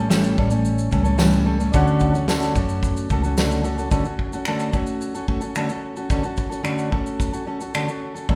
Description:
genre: acoustic pop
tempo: 110 BPM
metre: 4/4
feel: straight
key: D major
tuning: A4 = 443 Hz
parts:
  - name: clear concert grand piano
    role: accompaniment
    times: 0.0-3.9 s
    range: C#4 to G5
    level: -36 LUFS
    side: equal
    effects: none
  - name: fingerpicked steel-string acoustic guitar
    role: accompaniment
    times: 0.0-8.4 s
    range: A2 to A4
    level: -24 LUFS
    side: equal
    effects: none
  - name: vintage muted fingered electric bass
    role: bass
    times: 0.0-3.9 s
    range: A1 to F#2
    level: -26 LUFS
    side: equal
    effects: none
  - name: loose indie drum kit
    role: drums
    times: 0.1-8.4 s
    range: finger snaps, kick drum, shaker, snare drum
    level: -27 LUFS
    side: equal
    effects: none
  - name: tambourine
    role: percussion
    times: 0.1-3.5 s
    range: none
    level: -38 LUFS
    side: equal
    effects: none
room: wet concert hall reverb, RT60 2.1 s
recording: recorded in a church or concert hall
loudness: -22 LUFS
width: mono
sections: 0.0-3.9 A section; 3.9-8.3 B section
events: none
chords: 0.0 A7; 1.7 Dmaj7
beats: 0.11 0.66 1.20 | 1.74 2.29 2.83 3.38 | 3.92 4.46 5.01 5.55 | 6.10 6.65 7.19 7.74 | 8.29

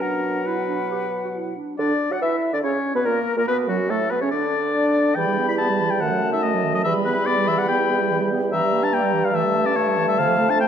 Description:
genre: quick classical-period movement for wind quintet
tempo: 143 BPM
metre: 4/4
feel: rubato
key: unclear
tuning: A4 = 440 Hz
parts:
  - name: silver concert flute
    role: melody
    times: 0.0-10.7 s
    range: F#4 to B5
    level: -27 LUFS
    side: left 7 dB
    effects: none
  - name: clear oboe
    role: second line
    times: 0.0-10.7 s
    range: F#4 to B5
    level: -24 LUFS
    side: left 3 dB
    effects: none
  - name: warm French horn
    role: accompaniment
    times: 0.0-10.7 s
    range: F#3 to F#4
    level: -27 LUFS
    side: equal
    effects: none
  - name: warm clarinet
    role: accompaniment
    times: 0.0-10.7 s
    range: D3 to G4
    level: -27 LUFS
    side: right 6 dB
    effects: none
  - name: mellow bassoon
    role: bass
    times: 0.0-10.7 s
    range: E2 to F#3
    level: -24 LUFS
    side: right 2 dB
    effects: none
room: moderate scoring stage reverb, RT60 2.0 s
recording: none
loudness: -19 LUFS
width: side -8 dB against mid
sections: 0.0-1.8 A section; 1.8-10.7 B section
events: none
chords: 0.0 Bm; 1.8 Dadd9; 2.6 A#m; 3.5 Bm; 5.2 Em; 6.0 D#dim/F#; 6.8 Em; 8.5 Em7b5/G; 9.3 A7/G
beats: | 0.01 0.46 0.90 1.34 | 1.78 2.21 2.64 3.06 | 3.47 3.90 4.32 4.74 | 5.16 5.59 6.01 6.43 | 6.85 7.27 7.69 8.10 | 8.52 8.93 9.34 9.76 | 10.18 10.60

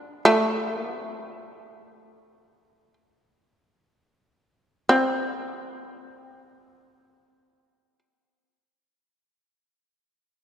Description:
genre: japanese traditional, Japanese chamber music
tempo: free time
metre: none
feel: none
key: unclear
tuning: A4 = 440 Hz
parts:
  - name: shamisen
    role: solo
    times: 0.0-8.0 s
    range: C4 to D4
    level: -22 LUFS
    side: equal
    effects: none
room: wet church reverb, RT60 3.1 s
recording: none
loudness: -22 LUFS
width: side -10 dB against mid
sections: 0.0-4.9 A section; 4.9-10.3 B section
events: slowing down 0.0-4.9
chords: none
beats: free time

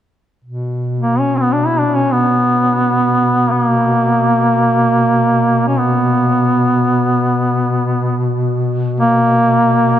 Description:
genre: caucasian folk, Caucasian lament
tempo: free time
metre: none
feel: none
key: unclear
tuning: A4 = 440 Hz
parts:
  - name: mellow duduk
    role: drone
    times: 0.4-10.0 s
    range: B2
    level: -17 LUFS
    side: left 2 dB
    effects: none
  - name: warm duduk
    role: melody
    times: 1.0-10.0 s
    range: A#3 to E4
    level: -13 LUFS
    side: right 1 dB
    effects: none
room: moderate cathedral reverb, RT60 4.7 s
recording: dark, warm production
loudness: -12 LUFS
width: side -11 dB against mid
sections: 0.4-10.0 A section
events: none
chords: none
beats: free time

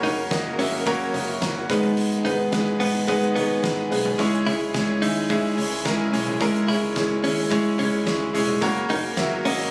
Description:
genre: piano-driven pop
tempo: 108 BPM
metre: 4/4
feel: straight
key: unclear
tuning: A4 = 441 Hz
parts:
  - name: clear concert grand piano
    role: accompaniment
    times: 0.0-9.7 s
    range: G#2 to D#6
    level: -24 LUFS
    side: equal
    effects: none
  - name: rich studio string section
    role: sustained chords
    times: 0.0-9.7 s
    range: B2 to A#4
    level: -36 LUFS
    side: equal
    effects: none
  - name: direct-recorded clean electric guitar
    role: riff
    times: 0.0-9.7 s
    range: B3 to E4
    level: -30 LUFS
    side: equal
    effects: warbly pitch drift
  - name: vintage muted fingered electric bass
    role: bass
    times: 0.0-9.7 s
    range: E1 to D#2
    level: -37 LUFS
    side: equal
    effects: none
  - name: loose indie drum kit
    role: drums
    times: 0.0-9.7 s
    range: hi-hat, kick drum, snare drum, toms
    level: -32 LUFS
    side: equal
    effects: none
room: moderate large studio reverb, RT60 0.8 s, small room ambience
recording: recorded on a phone in the room, club reverb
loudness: -23 LUFS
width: mono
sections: 0.0-9.7 A section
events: none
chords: 0.0 F#; 1.7 G#m; 4.2 C#m; 8.6 F#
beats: 0.31 0.87 1.42 | 1.97 2.53 3.08 3.64 | 4.19 4.74 5.30 5.85 | 6.41 6.96 7.51 8.07 | 8.62 9.18

